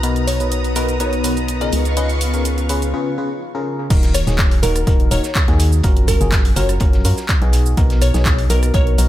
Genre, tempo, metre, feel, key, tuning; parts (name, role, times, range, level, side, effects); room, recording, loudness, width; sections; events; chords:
piano house; 124 BPM; 4/4; straight; Eb minor; A4 = 440 Hz
string machine, violins; sustained chords; 0.0-2.9 s; B3 to D#6; -26 LUFS; left 2 dB; ensemble chorus, sidechain pumping
barking FM electric piano; riff; 0.0-9.1 s; B2 to B4; -23 LUFS; left 2 dB; chorus, sidechain pumping, tape echo
organ-like FM bass; bass; 0.0-9.1 s; Eb1 to Gb2; -18 LUFS; equal; tube saturation, sidechain pumping
house drum kit; drums; 0.0-9.1 s; crash cymbal, handclaps, hi-hat, rim click, shaker; -24 LUFS; right 1 dB; studio ambience
granular cloud pad; texture; 0.0-2.9 s; B3 to Bb5; -28 LUFS; left 2 dB; built-in reverb, analog chorus, sidechain pumping
glassy wavetable pluck; melody; 0.3-8.9 s; A#4 to D#5; -25 LUFS; left 1 dB; chorus, tape echo
electronic kick drum; drums; 3.9-8.8 s; -16 LUFS; equal; studio ambience
vintage drum kit; drums; 3.9-9.1 s; hi-hat, snare drum; -34 LUFS; right 2 dB
light reverb; -14 LUFS; side -13 dB against mid
0.0-3.9 A section; 3.9-9.1 B section
break 2.9-3.9; drop 3.9-9.1
0.0 Bmaj7; 1.7 Db7; 3.9 Ebm; 5.8 Gbmaj7; 7.5 Bmaj7